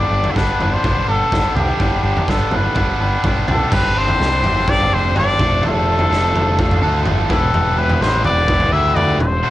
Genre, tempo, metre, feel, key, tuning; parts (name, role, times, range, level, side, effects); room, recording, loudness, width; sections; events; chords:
indie rock; 126 BPM; 4/4; straight; A4 = 440 Hz
clear trumpet; melody; 0.0-9.5 s; G4 to E5; -19 LUFS; left 2 dB; cassette tape, plate reverb, tape echo
biting overdriven guitar; riff; 0.0-9.5 s; G2 to C5; -21 LUFS; equal; spring reverb, cassette tape
growling picked electric bass; bass; 0.0-9.4 s; E1 to D2; -20 LUFS; equal; overdrive
raw garage drum kit; drums; 0.2-9.3 s; crash cymbal, kick drum, snare drum, toms; -20 LUFS; equal; cassette tape
light reverb; home recording on cassette; -14 LUFS; side -14 dB against mid
0.0-3.7 A section; 3.7-9.5 B section
0.0 G; 3.7 Gsus4; 5.4 Dm/F; 7.3 Em7